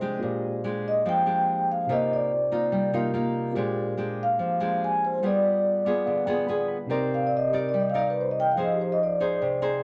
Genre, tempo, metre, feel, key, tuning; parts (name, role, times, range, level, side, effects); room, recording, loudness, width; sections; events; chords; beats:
bossa nova; 144 BPM; 4/4; straight; C minor; A4 = 440 Hz
nylon-string guitar; accompaniment; 0.0-9.8 s; Bb2 to D5; -31 LUFS; equal
tine electric piano; accompaniment; 0.0-9.8 s; C3 to C6; -35 LUFS; equal; phaser
vibraphone with soft mallets; melody; 0.9-9.8 s; G4 to Ab5; -26 LUFS; equal
light reverb; -25 LUFS; mono
0.0-6.9 A section; 6.9-9.8 B section
tine electric piano fill 5.6-6.9, 9.4-9.8; vibraphone solo 6.9-9.8
0.2 Bb13; 1.9 Cm11; 3.6 Bb13; 5.2 G7b9; 6.9 Cm9; 8.6 Fm7
| 0.21 0.63 1.05 1.47 | 1.88 2.30 2.72 3.14 | 3.55 3.97 4.39 4.81 | 5.23 5.64 6.06 6.48 | 6.90 7.32 7.73 8.15 | 8.57 8.99 9.41 9.83